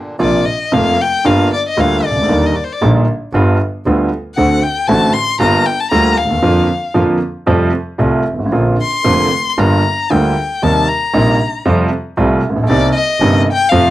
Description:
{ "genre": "tango", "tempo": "115 BPM", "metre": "4/4", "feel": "rubato", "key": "Bb major", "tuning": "A4 = 442 Hz", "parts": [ { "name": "warm violin", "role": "second line", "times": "0.2-13.9 s", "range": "C5 to C6", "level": "-16 LUFS", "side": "left 4 dB", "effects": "cassette tape" }, { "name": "warm grand piano", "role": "accompaniment", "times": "0.2-13.9 s", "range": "F1 to F#4", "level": "-13 LUFS", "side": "right 1 dB", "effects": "cassette tape" }, { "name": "bright double bass", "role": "bass", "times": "0.2-13.9 s", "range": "F1 to F2", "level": "-20 LUFS", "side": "right 1 dB", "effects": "none" } ], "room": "moderate studio reverb, RT60 0.6 s", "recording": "home recording on cassette", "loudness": "-11 LUFS", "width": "side -15 dB against mid", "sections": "0.2-13.9 A section", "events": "break 0.0; violin solo 0.2-13.9", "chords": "0.2 Bbsus2; 1.3 Gm7; 2.3 Ebmaj7; 3.3 G7; 4.4 D7; 5.4 Gm7; 6.4 Bb/F; 7.5 Fadd9; 8.5 Bbadd9; 9.6 Gm7; 10.6 Eb6; 11.7 Fadd9; 12.7 Cm7" }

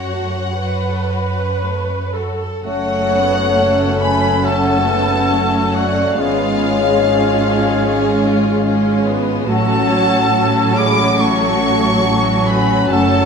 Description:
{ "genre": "classical, slow romantic movement for symphony orchestra", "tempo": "70 BPM", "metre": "4/4", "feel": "uneven beats, rubato", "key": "F# minor", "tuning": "A4 = 443 Hz", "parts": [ { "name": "warm studio violin section", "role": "melody", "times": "0.0-13.3 s", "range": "E#5 to D6", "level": "-22 LUFS", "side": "left 2 dB", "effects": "none" }, { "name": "rich studio violin section", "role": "second line", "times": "0.0-13.3 s", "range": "A3 to C#5", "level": "-24 LUFS", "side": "left 7 dB", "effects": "none" }, { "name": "rich studio viola section", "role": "accompaniment", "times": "0.0-13.3 s", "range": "E#3 to B4", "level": "-21 LUFS", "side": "right 2 dB", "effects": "none" }, { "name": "rich studio cello section", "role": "bass", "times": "0.0-13.3 s", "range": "F#2 to A2", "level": "-21 LUFS", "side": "right 3 dB", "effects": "none" }, { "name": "dark clarinet", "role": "second line", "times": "2.6-13.3 s", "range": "C#4", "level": "-25 LUFS", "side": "left 1 dB", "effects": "none" }, { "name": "mellow large flute ensemble", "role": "second line", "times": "2.6-13.3 s", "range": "C#5 to B5", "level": "-20 LUFS", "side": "left 2 dB", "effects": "none" }, { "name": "mellow French horn section", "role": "sustained chords", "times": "2.6-13.3 s", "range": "F#3 to C#4", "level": "-23 LUFS", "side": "left 5 dB", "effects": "none" }, { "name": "warm studio double bass section", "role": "bass", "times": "2.6-13.3 s", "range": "F#1 to A1", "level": "-24 LUFS", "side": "right 4 dB", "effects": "none" }, { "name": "warm oboe", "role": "second line", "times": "2.7-13.3 s", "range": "E#4 to D5", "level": "-24 LUFS", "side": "right 2 dB", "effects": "none" }, { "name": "clear bassoon", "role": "accompaniment", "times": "2.7-13.3 s", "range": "F#3 to A3", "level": "-24 LUFS", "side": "right 2 dB", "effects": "none" } ], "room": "wet recital hall reverb, RT60 1.4 s", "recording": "none", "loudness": "-13 LUFS", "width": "side -6 dB against mid", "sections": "0.0-2.7 A section; 2.7-13.3 B section", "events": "none", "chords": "0.0 F#m; 6.2 C#7/G#; 9.5 F#m/A" }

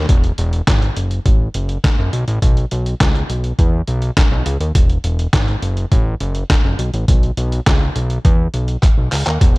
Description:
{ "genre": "early-eighties boogie funk", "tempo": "103 BPM", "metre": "4/4", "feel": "straight", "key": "E major", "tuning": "A4 = 440 Hz", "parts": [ { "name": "fat analog bass", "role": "bass", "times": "0.0-9.6 s", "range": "E1 to E2", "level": "-18 LUFS", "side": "equal", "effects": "none" }, { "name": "trip hop sampler-style drum kit", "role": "drums", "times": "0.1-9.6 s", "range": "handclaps, hi-hat, kick drum, snare drum", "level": "-14 LUFS", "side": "equal", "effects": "gated reverb" } ], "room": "little or no reverb", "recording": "none", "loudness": "-14 LUFS", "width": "side -23 dB against mid", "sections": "0.1-9.6 A section", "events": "drum fill 8.8-9.4", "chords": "none" }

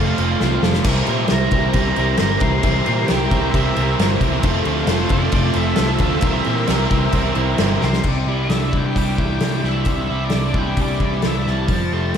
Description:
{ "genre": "rock, shoegaze and dream pop", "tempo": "133 BPM", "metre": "4/4", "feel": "straight", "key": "C mixolydian", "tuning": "A4 = 440 Hz", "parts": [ { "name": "octave-fuzz lead guitar", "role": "melody", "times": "0.0-12.2 s", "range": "C5 to C6", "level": "-27 LUFS", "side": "equal", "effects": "distortion, diffuse ambient delay" }, { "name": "biting overdriven guitar", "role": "riff", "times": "0.0-12.2 s", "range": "C3 to Bb4", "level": "-24 LUFS", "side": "left 7 dB", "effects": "wide subtle chorus" }, { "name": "crunchy overdriven guitar", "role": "riff", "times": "0.0-12.2 s", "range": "C3 to Bb4", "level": "-23 LUFS", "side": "right 7 dB", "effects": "reverse reverb" }, { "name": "picked electric bass", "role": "bass", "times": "0.0-12.2 s", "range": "F1 to Bb2", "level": "-22 LUFS", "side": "equal", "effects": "none" }, { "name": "loose indie drum kit", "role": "drums", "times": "0.2-12.2 s", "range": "crash cymbal, hi-hat, kick drum, snare drum", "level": "-21 LUFS", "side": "equal", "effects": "none" }, { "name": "string machine, violas", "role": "sustained chords", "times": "0.9-8.0 s", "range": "F4 to C6", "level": "-27 LUFS", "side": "equal", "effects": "ensemble chorus" } ], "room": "moderate lush hall reverb, RT60 1.7 s, studio reverb", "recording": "dreamy mix soaked in reverb", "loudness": "-16 LUFS", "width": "side -8 dB against mid", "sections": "0.0-8.1 A section; 8.1-12.2 B section", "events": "drum fill 0.4-0.8, 7.8", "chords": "0.0 F; 0.8 C7; 4.4 Fmaj7; 6.2 C7; 8.1 Cadd9" }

